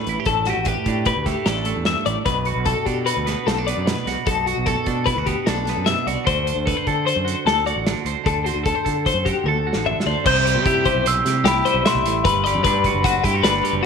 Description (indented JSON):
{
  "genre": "math rock and midwest emo",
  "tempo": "150 BPM",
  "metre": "5/4",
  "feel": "straight",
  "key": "unclear",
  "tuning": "A4 = 440 Hz",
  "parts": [
    { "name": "twelve-string electric guitar", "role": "accompaniment", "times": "0.0-13.9 s", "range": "G2 to C5", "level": "-25 LUFS", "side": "right 13 dB", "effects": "spring reverb" },
    { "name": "twelve-string electric guitar", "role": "arpeggios", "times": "0.0-13.9 s", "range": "F#4 to E5", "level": "-22 LUFS", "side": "left 11 dB", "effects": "tremolo" },
    { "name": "growling fingered electric bass", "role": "bass", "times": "0.1-13.8 s", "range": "F#1 to D3", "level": "-25 LUFS", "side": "right 1 dB", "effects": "overdrive" },
    { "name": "loose indie drum kit", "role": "drums", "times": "0.1-13.7 s", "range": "crash cymbal, hi-hat, kick drum, snare drum, toms", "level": "-25 LUFS", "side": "right 1 dB", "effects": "none" },
    { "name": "glockenspiel with rubber mallets", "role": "melody", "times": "10.3-13.4 s", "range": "B5 to G6", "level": "-22 LUFS", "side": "left 2 dB", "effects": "tape echo" }
  ],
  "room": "light reverb, small room reverb",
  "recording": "1960s-style stereo with parts hard left and right",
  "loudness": "-18 LUFS",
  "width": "side -6 dB against mid",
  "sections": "0.0-10.3 A section; 10.3-13.9 B section",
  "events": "drum fill 9.5-10.3",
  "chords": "0.0 A9sus4; 2.3 Bm7; 6.3 D13; 10.3 Cmaj7; 12.2 Gmaj7"
}